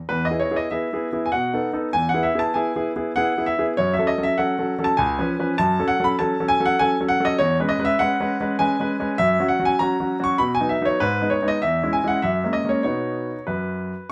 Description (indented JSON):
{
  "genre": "classical-period piano sonatina",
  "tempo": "99 BPM",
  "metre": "3/4",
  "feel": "straight",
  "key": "E major, B major from 7.4 s",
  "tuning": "A4 = 440 Hz",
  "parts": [
    { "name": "bright grand piano", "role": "solo", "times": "0.1-14.1 s", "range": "C#2 to C#6", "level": "-22 LUFS", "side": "equal", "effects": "none" }
  ],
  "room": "light reverb",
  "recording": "close, detailed microphones",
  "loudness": "-22 LUFS",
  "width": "mono",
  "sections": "0.1-14.1 A section",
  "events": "none",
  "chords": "0.1 E; 1.3 B7; 1.9 E; 3.8 F#m; 5.0 C#7; 5.6 F#m; 7.4 C#m7/E; 9.2 F#5; 10.4 B; 11.0 G#m; 11.6 C#m/E; 12.2 F#9; 12.9 B",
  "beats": "| 0.10 0.72 1.33 | 1.94 2.55 3.16 | 3.77 4.38 4.98 | 5.58 6.19 6.79 | 7.39 7.99 8.60 | 9.20 9.80 10.40 | 11.01 11.62 12.23 | 12.86 13.48 14.11"
}